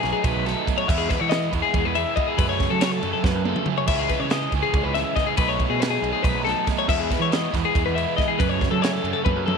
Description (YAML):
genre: math rock and midwest emo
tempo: 280 BPM (eighths)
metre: 7/8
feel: straight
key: E major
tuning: A4 = 440 Hz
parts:
  - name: twelve-string electric guitar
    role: arpeggios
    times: 0.0-9.6 s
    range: G#4 to E5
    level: -24 LUFS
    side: left 14 dB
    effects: spring reverb, slapback echo
  - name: crunchy overdriven guitar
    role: riff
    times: 0.0-9.6 s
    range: F#2 to E4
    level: -26 LUFS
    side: right 18 dB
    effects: none
  - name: growling picked electric bass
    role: bass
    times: 0.0-9.5 s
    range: B1 to F#3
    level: -28 LUFS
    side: right 1 dB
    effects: overdrive
  - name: compact cocktail drum kit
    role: drums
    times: 0.0-9.6 s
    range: crash cymbal, kick drum, ride cymbal, snare drum, toms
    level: -25 LUFS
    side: right 1 dB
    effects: none
room: little or no reverb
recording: 1960s-style stereo with parts hard left and right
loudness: -20 LUFS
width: side -6 dB against mid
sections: 0.0-9.6 A section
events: drum fill 3.2-3.9, 9.3-9.6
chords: 0.0 B13; 0.9 Emaj7; 2.4 F#m; 3.9 C#m9; 5.4 B13; 6.9 Emaj7; 8.4 F#m